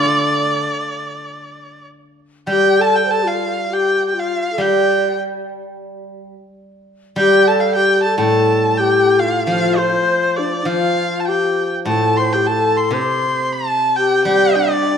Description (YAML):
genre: chinese traditional, Chinese chamber ensemble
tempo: 101 BPM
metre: 4/4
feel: uneven beats, rubato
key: unclear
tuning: A4 = 439 Hz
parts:
  - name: clear erhu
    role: melody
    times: 0.0-15.0 s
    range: C5 to C6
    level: -18 LUFS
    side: right 1 dB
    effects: none
  - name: steel-string zither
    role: accompaniment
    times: 0.0-15.0 s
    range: A2 to A4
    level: -21 LUFS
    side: right 3 dB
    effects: none
  - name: breathy bright low xiao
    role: second line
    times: 2.5-15.0 s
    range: D4 to C5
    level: -18 LUFS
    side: left 5 dB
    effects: none
room: wet recital hall reverb, RT60 1.4 s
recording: dark, warm production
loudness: -14 LUFS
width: side -7 dB against mid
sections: 0.0-2.5 A section; 2.5-15.0 B section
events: none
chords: none